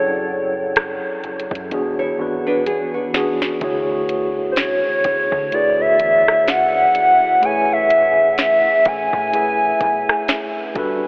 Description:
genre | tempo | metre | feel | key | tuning
contemporary R&B | 63 BPM | 4/4 | swing 58% on 16ths | A major | A4 = 437 Hz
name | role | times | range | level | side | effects
hollow clarinet-like synth lead | melody | 0.0-10.8 s | C5 to G#5 | -16 LUFS | equal | chorus, diffuse ambient delay
mellow tine electric piano | accompaniment | 0.0-11.1 s | D3 to E5 | -22 LUFS | equal | medium stereo tremolo
deep dub fingered electric bass | bass | 0.0-11.1 s | E1 to D3 | -36 LUFS | equal | none
smooth R&B drum kit | drums | 0.8-11.0 s | hi-hat, kick drum, rim click, snare drum | -23 LUFS | equal | none
nylon-string guitar | arpeggios | 2.0-3.6 s | B3 to C#5 | -25 LUFS | equal | diffuse ambient delay
room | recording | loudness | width
wet huge ambient reverb, RT60 8.5 s | dreamy mix soaked in reverb, telephone sound | -15 LUFS | side -31 dB against mid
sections
0.0-3.6 A section; 3.6-11.1 B section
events
drum fill 1.7-3.6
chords
0.0 F#m7; 1.7 E9; 3.6 Dmaj9#11; 7.4 Amaj7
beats
0.76 1.71 2.66 | 3.61 4.57 5.52 6.47 | 7.42 8.38 9.33 10.28

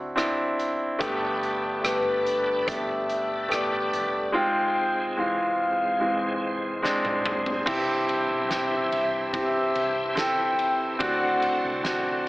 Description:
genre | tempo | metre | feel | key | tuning
pop ballad | 72 BPM | 4/4 | straight | C major | A4 = 440 Hz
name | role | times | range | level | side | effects
mellow horn-like synth lead | melody | 0.0-11.8 s | B4 to G5 | -27 LUFS | left 1 dB | chorus, phaser
clear concert grand piano | accompaniment | 0.0-12.3 s | G2 to A4 | -26 LUFS | equal | none
woody fretless electric bass | bass | 0.0-12.3 s | F1 to D2 | -47 LUFS | equal | analog chorus
huge arena drum kit | drums | 0.2-12.0 s | crash cymbal, hi-hat, kick drum, ride cymbal, rim click, snare drum, toms | -32 LUFS | equal | none
bright tonewheel organ | sustained chords | 1.0-12.3 s | Ab2 to B4 | -33 LUFS | equal | chorus vibrato, slow rotary speaker
room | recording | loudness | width
light reverb, studio reverb | AM radio sound, faint mains hum | -23 LUFS | side -19 dB against mid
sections
0.0-7.7 A section; 7.7-12.3 B section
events
drum fill 6.8-7.7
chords
0.0 D7; 1.0 Gadd9; 4.3 Fm/Ab; 7.7 C; 11.0 D7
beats
0.18 | 1.01 1.84 2.68 3.51 | 4.34 5.18 6.01 6.84 | 7.68 8.51 9.34 10.18 | 11.01 11.84

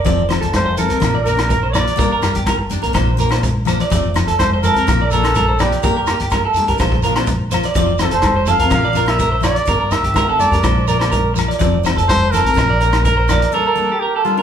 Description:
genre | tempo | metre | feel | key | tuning
highlife guitar band | 125 BPM | 4/4 | straight | unclear | A4 = 440 Hz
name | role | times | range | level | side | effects
picked steel-string acoustic guitar | accompaniment | 0.0-14.4 s | F3 to G4 | -22 LUFS | left 7 dB | none
clean electric guitar | arpeggios | 0.0-14.4 s | G4 to D5 | -19 LUFS | right 3 dB | spring reverb
upright bass | bass | 0.0-13.4 s | F1 to G2 | -20 LUFS | equal | none
vintage drum kit | drums | 0.1-13.5 s | hi-hat, kick drum, rim click | -22 LUFS | equal | none
congas | percussion | 0.1-13.2 s | none | -27 LUFS | left 1 dB | none
shekere | percussion | 0.1-13.4 s | none | -27 LUFS | right 2 dB | none
agogo bells | percussion | 0.3-13.4 s | none | -26 LUFS | left 4 dB | none
warm trumpet | melody | 0.6-14.4 s | F4 to F5 | -20 LUFS | equal | none
room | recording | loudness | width
moderate large studio reverb, RT60 1.0 s | band playing live in one room | -13 LUFS | side -8 dB against mid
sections
0.1-14.4 A section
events
break 13.5-14.4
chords
0.1 F; 1.0 Bb; 2.0 Gm; 3.0 Bb; 3.9 F; 4.9 Bb; 5.8 Gm; 6.8 Bb; 7.8 F; 8.7 Bb; 9.7 Gm; 10.6 Bb; 11.6 F; 12.6 Bb; 13.5 Gm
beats
| 0.07 0.55 1.03 1.51 | 1.99 2.47 2.95 3.43 | 3.91 4.39 4.88 5.36 | 5.83 6.32 6.80 7.28 | 7.76 8.24 8.72 9.20 | 9.68 10.16 10.64 11.12 | 11.61 12.09 12.57 13.05 | 13.53 14.01

